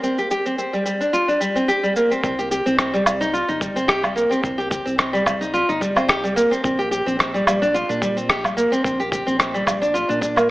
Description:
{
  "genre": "organic downtempo",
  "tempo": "109 BPM",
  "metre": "4/4",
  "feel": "swing 54% on 16ths",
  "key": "C minor",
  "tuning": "A4 = 441 Hz",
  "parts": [
    { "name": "nylon-string guitar", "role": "arpeggios", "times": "0.0-10.5 s", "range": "G3 to G4", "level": "-19 LUFS", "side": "equal", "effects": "digital delay" },
    { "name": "electronic shaker, rim click and woodblock", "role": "drums", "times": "0.0-10.5 s", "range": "none", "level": "-22 LUFS", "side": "equal", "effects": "none" },
    { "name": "round analog bass", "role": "bass", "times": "2.2-10.5 s", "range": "G1 to Bb2", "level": "-32 LUFS", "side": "equal", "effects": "sidechain pumping" },
    { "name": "electronic kick drum", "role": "drums", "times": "2.2-10.3 s", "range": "none", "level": "-28 LUFS", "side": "equal", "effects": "none" }
  ],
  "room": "moderate scoring stage reverb, RT60 1.8 s",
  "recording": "AM radio sound",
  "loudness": "-18 LUFS",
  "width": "side -18 dB against mid",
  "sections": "0.0-2.2 A section; 2.2-10.5 B section",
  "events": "none",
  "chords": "0.0 Bbsus2 (rootless); 2.2 C5; 6.6 Bb69",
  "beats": "| 0.04 0.59 1.14 1.69 | 2.24 2.79 3.34 3.89 | 4.44 4.99 5.54 6.09 | 6.64 7.19 7.74 8.29 | 8.84 9.39 9.94 10.49"
}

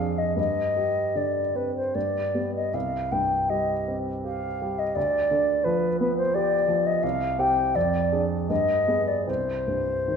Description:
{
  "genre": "classical, romantic duo for flute and grand piano",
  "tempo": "72-88 BPM",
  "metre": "3/4",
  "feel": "rubato",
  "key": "C minor",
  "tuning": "A4 = 440 Hz",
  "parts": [
    { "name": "mellow concert flute", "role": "melody", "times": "0.0-10.2 s", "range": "B4 to G5", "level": "-24 LUFS", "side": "left 1 dB", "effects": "none" },
    { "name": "warm concert grand piano", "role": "accompaniment", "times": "0.0-10.2 s", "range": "C2 to Ab4", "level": "-28 LUFS", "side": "right 2 dB", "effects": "none" }
  ],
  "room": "wet recital hall reverb, RT60 1.5 s",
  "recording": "minimal, uncompressed stereo recording",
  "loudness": "-22 LUFS",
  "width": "side -6 dB against mid",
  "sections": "0.0-10.2 A section",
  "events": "none",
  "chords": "0.4 Gsus4; 2.0 G; 2.7 Cm; 5.0 G7/D; 7.0 C5; 7.8 Ddim/F; 8.5 G; 9.3 C5",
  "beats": "| 0.38 1.17 1.95 | 2.74 3.51 4.25 | 4.96 5.66 6.34 | 7.04 7.75 8.50 | 9.28 10.09"
}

